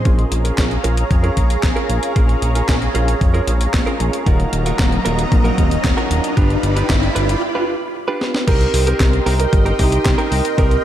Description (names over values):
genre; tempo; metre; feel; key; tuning
italo disco; 114 BPM; 4/4; straight; Bb minor; A4 = 440 Hz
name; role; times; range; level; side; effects
lush unison pad; sustained chords; 0.0-10.8 s; Gb3 to C6; -24 LUFS; right 1 dB; chorus, phaser
direct-recorded clean electric guitar; stabs; 0.0-10.8 s; C4 to B4; -25 LUFS; right 3 dB; low-pass filter, ping-pong delay
fat analog bass; bass; 0.1-10.8 s; Eb1 to F2; -18 LUFS; equal; none
clean 12-bit digital drum machine; drums; 0.1-10.8 s; crash cymbal, handclaps, hi-hat, snare drum; -24 LUFS; left 1 dB; gated reverb
electronic kick drum; drums; 0.1-10.7 s; none; -17 LUFS; equal; none
riser; sound effects; 3.1-7.4 s; none; -25 LUFS; equal; none
dark baby grand piano; melody; 8.5-10.8 s; Eb4 to Bb4; -21 LUFS; right 3 dB; vintage 12-bit sampler grit, digital delay
room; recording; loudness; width
light reverb; none; -14 LUFS; side -11 dB against mid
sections
0.1-8.5 A section; 8.5-10.8 B section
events
riser 3.1-7.4; break 7.4-8.5; drum fill 8.2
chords
0.1 Bbm7; 4.3 Ebmadd9; 6.4 G7; 8.5 Cm7